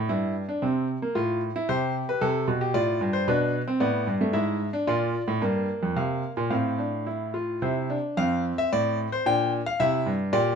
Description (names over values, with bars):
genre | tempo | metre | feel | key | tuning
classical, baroque-style 3-part fugue for grand piano | 111 BPM | 3/4 | straight | F major from 4.9 s | A4 = 438 Hz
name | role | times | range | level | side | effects
clear grand piano | solo | 0.0-10.6 s | F2 to G5 | -23 LUFS | equal | none
room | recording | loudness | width
light reverb | minimal, uncompressed stereo recording | -24 LUFS | side -6 dB against mid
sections
0.0-8.2 A section; 8.2-10.6 B section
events
none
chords
0.1 C7/G; 1.2 F/A; 1.7 C5; 2.7 F/A; 3.3 Gadd9; 4.3 E7/G#; 4.9 Bb; 6.5 F/A; 7.6 C; 8.2 F; 9.3 Gm7/Bb; 9.8 C7